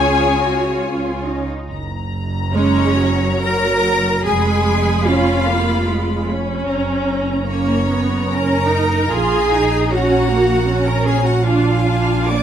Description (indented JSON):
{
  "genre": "classical, slow romantic movement for string orchestra",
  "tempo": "64-79 BPM",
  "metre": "3/4",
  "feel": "rubato",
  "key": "F# major",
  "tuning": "A4 = 440 Hz",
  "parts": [
    { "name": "rich symphonic violin section", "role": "melody", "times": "0.0-12.4 s", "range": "G#5 to Cb6", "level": "-26 LUFS", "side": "left 7 dB", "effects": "none" },
    { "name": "rich symphonic violin section", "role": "second line", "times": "0.0-12.4 s", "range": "G#4 to D6", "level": "-23 LUFS", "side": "left 3 dB", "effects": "none" },
    { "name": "warm symphonic viola section", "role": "accompaniment", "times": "0.0-12.4 s", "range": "F#3 to E#4", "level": "-20 LUFS", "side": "right 1 dB", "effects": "none" },
    { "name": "rich symphonic cello section", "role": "bass", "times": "0.0-12.4 s", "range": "C#4 to D5", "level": "-20 LUFS", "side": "right 2 dB", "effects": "none" },
    { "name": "rich symphonic double bass section", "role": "bass", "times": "0.0-12.4 s", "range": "F1 to C#2", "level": "-20 LUFS", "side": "right 2 dB", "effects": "none" }
  ],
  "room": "moderate recital hall reverb, RT60 1.6 s",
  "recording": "none",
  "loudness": "-15 LUFS",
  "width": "side -9 dB against mid",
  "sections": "0.0-1.7 A section; 1.7-12.4 B section",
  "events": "none",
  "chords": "0.0 C#; 1.7 F#; 4.3 Fdim; 6.7 F#; 9.1 F#/A#; 11.5 A#7",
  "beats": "0.84 | 1.70 2.54 3.44 | 4.26 5.08 5.89 | 6.68 7.48 8.33 | 9.12 9.92 10.68 | 11.45 12.29"
}